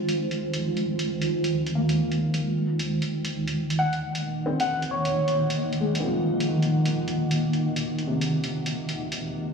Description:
future garage; 133 BPM; 4/4; swing 65% on 16ths; Eb dorian; A4 = 441 Hz
felt-muted upright piano; accompaniment; 0.0-9.5 s; C3 to C4; -28 LUFS; left 1 dB; analog delay
granular cloud pad; sustained chords; 0.0-9.5 s; Eb3 to Gb5; -26 LUFS; right 1 dB; built-in reverb
electronic hi-hat; drums; 0.1-9.2 s; -34 LUFS; equal; overdrive
soft struck synth lead; melody; 3.8-5.4 s; Db5 to Gb5; -27 LUFS; left 1 dB; chorus, analog delay
moderate lush hall reverb, RT60 1.8 s; played on a big sound system in a bare room, large studio reverb, vinyl crackle; -23 LUFS; side -5 dB against mid
0.0-9.5 A section
filter sweep on ambient pad 0.0-9.5
0.0 Ab6; 2.4 Ebm
0.17 | 0.62 1.07 1.52 1.98 | 2.43 2.88 3.33 3.78 | 4.23 4.68 5.13 5.58 | 6.04 6.49 6.94 7.39 | 7.84 8.29 8.74 9.19

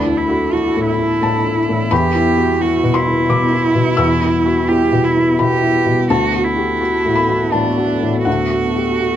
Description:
neoclassical piano and strings; 85 BPM; 3/4; rubato; E minor; A4 = 440 Hz
clear cello; second line; 0.0-9.2 s; D4 to G4; -19 LUFS; right 5 dB
felt-muted upright piano; accompaniment; 0.0-9.2 s; D2 to E6; -16 LUFS; left 2 dB
chorused pulse-width pad; sustained chords; 0.0-9.2 s; G3 to A4; -22 LUFS; right 1 dB
light reverb; close, detailed microphones; -13 LUFS; side -10 dB against mid
0.0-9.2 A section
0.0 Dsus2; 1.9 Em; 6.1 Bm7/D
0.53 1.22 | 1.91 2.61 3.29 | 3.98 4.69 5.40 | 6.10 6.81 7.53 | 8.26 9.01

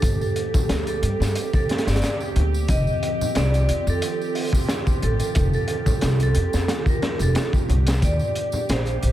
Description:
trip hop; 90 BPM; 4/4; swing 54% on 16ths; A4 = 440 Hz
vibraphone with medium hard mallets; melody; 0.0-9.1 s; A4 to Eb5; -28 LUFS; right 2 dB; tape echo
warbly tape-like pad; sustained chords; 0.0-9.1 s; Eb3 to G4; -31 LUFS; right 1 dB; chorus, built-in reverb, phaser
upright bass; bass; 0.0-9.1 s; F1 to G2; -21 LUFS; equal
crunchy breakbeat drum kit; drums; 0.0-9.1 s; hi-hat, kick drum, snare drum; -24 LUFS; equal
tambourine and congas; percussion; 0.0-9.0 s; -33 LUFS; equal
bowed-like drone; texture; 0.0-9.1 s; G4; -35 LUFS; right 6 dB; built-in reverb
studio reverb; -19 LUFS; side -13 dB against mid
0.0-9.1 A section
0.0 Gm7; 2.7 F7; 8.0 Ebmaj7
| 0.03 0.69 1.36 2.02 | 2.69 3.36 4.03 4.69 | 5.36 6.03 6.69 7.36 | 8.03 8.69

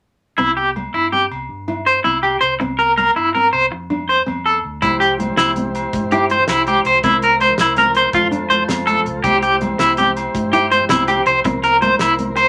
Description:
highlife guitar band; 109 BPM (dotted quarters); 12/8; straight; C mixolydian; A4 = 440 Hz
nylon-string guitar; accompaniment; 0.4-12.5 s; Bb3 to E4; -28 LUFS; equal
electric guitar at the edge of break-up; arpeggios; 0.4-12.5 s; E4 to C5; -16 LUFS; equal; tremolo
fingered electric bass; bass; 0.4-12.5 s; C2 to G2; -34 LUFS; equal
agogo bells; percussion; 0.4-12.5 s; -31 LUFS; equal
combo organ; sustained chords; 4.8-12.5 s; E4 to C5; -29 LUFS; equal
damped 70s drum kit; drums; 4.8-12.4 s; hi-hat, kick drum, snare drum; -29 LUFS; equal
congas; percussion; 4.8-12.4 s; -28 LUFS; equal
moderate small room ambience, RT60 0.5 s; -16 LUFS; mono
0.4-4.8 A section; 4.8-12.5 B section
0.4 C7; 3.7 F5; 4.8 C; 7.0 C7; 8.1 F; 9.2 C; 11.4 C7
| 0.38 0.93 1.49 2.05 | 2.60 3.16 3.71 4.27 | 4.82 5.37 5.93 6.48 | 7.03 7.58 8.13 8.69 | 9.24 9.79 10.34 10.89 | 11.45 12.00

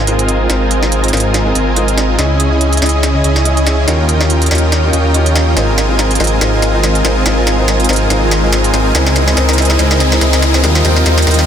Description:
future bass; 142 BPM; 4/4; swing 56% on 16ths, half-time; Ab major; A4 = 440 Hz
shimmering ambient pad; sustained chords; 0.0-11.5 s; Db3 to Eb5; -24 LUFS; equal
dense compressed supersaw; riff; 0.0-11.5 s; C4 to Ab5; -15 LUFS; right 1 dB; low-pass filter, tape echo
wide detuned saw bass; bass; 0.0-11.5 s; Ab1 to Eb2; -14 LUFS; equal; chorus
felt-muted upright piano; accompaniment; 0.1-11.5 s; Db3 to Eb5; -18 LUFS; left 3 dB; tape echo
trap drum kit; drums; 0.1-11.5 s; hi-hat, snare drum; -17 LUFS; right 1 dB; high-pass filter on hats, high-pass filter on snare
riser; sound effects; 8.1-11.5 s; -24 LUFS; equal
moderate lush hall reverb, RT60 1.7 s; dense, heavily limited modern master; -10 LUFS; side -9 dB against mid
0.0-11.5 A section
build-up 0.0-11.5; drum fill 0.0-11.5; riser 8.1-11.5
0.0 Ab69; 2.2 Dbmadd9; 3.9 Eb9; 5.6 Ab69; 8.9 Dbmadd9; 10.6 Ebadd9
0.07 | 0.50 0.92 1.34 1.76 | 2.19 2.61 3.03 3.45 | 3.88 4.30 4.72 5.14 | 5.57 5.99 6.41 6.83 | 7.26 7.68 8.10 8.52 | 8.95 9.37 9.79 10.21 | 10.64 11.06

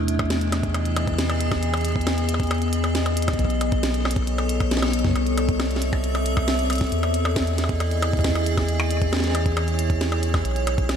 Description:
IDM; 136 BPM; 4/4; straight; E major; A4 = 436 Hz
icy glass pad; sustained chords; 0.0-11.0 s; E3 to E5; -25 LUFS; left 1 dB; chorus, built-in reverb
round analog bass; bass; 0.0-11.0 s; B1 to E2; -24 LUFS; equal
glitchy drum kit; drums; 0.1-11.0 s; hi-hat, percussion blips, snare drum; -27 LUFS; equal; ping-pong delay
electronic kick drum; drums; 0.2-10.9 s; -24 LUFS; equal; overdrive
moderate cathedral reverb, RT60 5.1 s; dreamy mix soaked in reverb; -20 LUFS; side -8 dB against mid
0.0-11.0 A section
0.0 Emaj7; 3.4 B9; 5.2 C69; 6.9 Emaj7; 10.4 B9
0.30 0.74 1.19 | 1.63 2.07 2.51 2.95 | 3.39 3.83 4.27 4.71 | 5.16 5.60 6.04 6.48 | 6.92 7.36 7.80 8.24 | 8.69 9.13 9.57 10.01 | 10.45 10.89

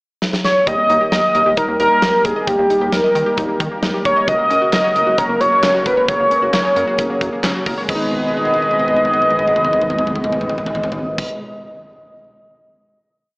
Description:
synth-pop; 133 BPM; 4/4; straight; G# minor; A4 = 445 Hz
huge arena drum kit; drums; 0.2-11.3 s; crash cymbal, handclaps, hi-hat, kick drum, snare drum, toms; -23 LUFS; equal
octave-doubled lead; melody; 0.4-11.2 s; G4 to D#5; -15 LUFS; equal; chorus, analog delay
chorused pulse-width pad; sustained chords; 0.7-11.2 s; C#3 to B4; -24 LUFS; equal
analog pluck; arpeggios; 0.7-11.3 s; F#3 to D#5; -26 LUFS; left 1 dB; chorus, analog delay
rubbery square bass; bass; 0.7-11.2 s; F#1 to D#3; -26 LUFS; equal
moderate lush hall reverb, RT60 1.8 s; AM radio sound; -14 LUFS; side -32 dB against mid
0.0-0.7 pickup bar; 0.7-7.9 pre-chorus; 7.9-11.5 final chord
drum fill 0.2-0.7, 8.1-11.2
0.0 N.C.; 0.7 D#; 4.3 F#; 7.9 G#m
0.22 | 0.67 1.12 1.57 2.02 | 2.48 2.93 3.38 3.83 | 4.28 4.73 5.18 5.63 | 6.08 6.54 6.99 7.44 | 7.89 8.34 8.79 9.24 | 9.69 10.14 10.60 11.05

